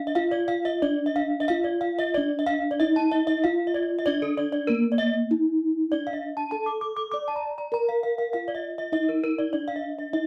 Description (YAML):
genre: gamelan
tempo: 89-100 BPM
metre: 4/4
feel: straight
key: D pelog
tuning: A4 = 440 Hz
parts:
  - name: gamelan-type bronze metallophone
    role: melody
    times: 0.0-10.3 s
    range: Bb3 to D5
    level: -27 LUFS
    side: equal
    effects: none
  - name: gamelan-type bronze metallophone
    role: arpeggios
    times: 0.1-10.2 s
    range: A4 to D6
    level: -31 LUFS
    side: equal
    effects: none
room: light reverb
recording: close, detailed microphones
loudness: -26 LUFS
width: mono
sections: 0.0-5.9 A section; 5.9-10.3 B section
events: none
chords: none